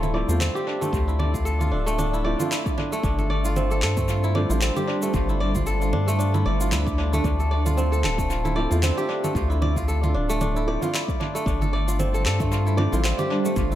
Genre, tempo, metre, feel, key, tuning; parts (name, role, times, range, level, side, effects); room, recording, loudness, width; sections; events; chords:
organic downtempo; 114 BPM; 4/4; swing 57% on 16ths; D minor; A4 = 439 Hz
granular cloud pad; sustained chords; 0.0-13.8 s; G3 to E5; -31 LUFS; right 1 dB; built-in reverb, sidechain pumping
kora; arpeggios; 0.0-13.8 s; A3 to D5; -26 LUFS; right 1 dB; low-pass filter, analog delay
round analog bass; bass; 0.0-13.8 s; D1 to G2; -23 LUFS; left 1 dB; sidechain pumping
electronic congas, shaker and handclaps; drums; 0.0-13.8 s; -30 LUFS; right 2 dB; studio reverb, dub echo
felt-muted upright piano; accompaniment; 0.1-4.6, 8.6-13.0 s; F3 to F4; -31 LUFS; right 2 dB; sidechain pumping, dub echo
electronic kick drum; drums; 0.9-13.7 s; -28 LUFS; left 1 dB; studio reverb
light reverb, digital ambience; echo-heavy mix; -21 LUFS; side -12 dB against mid
0.0-13.8 A section
0.0 Dm7; 3.0 G7sus4; 7.2 Dm7; 11.5 G7sus4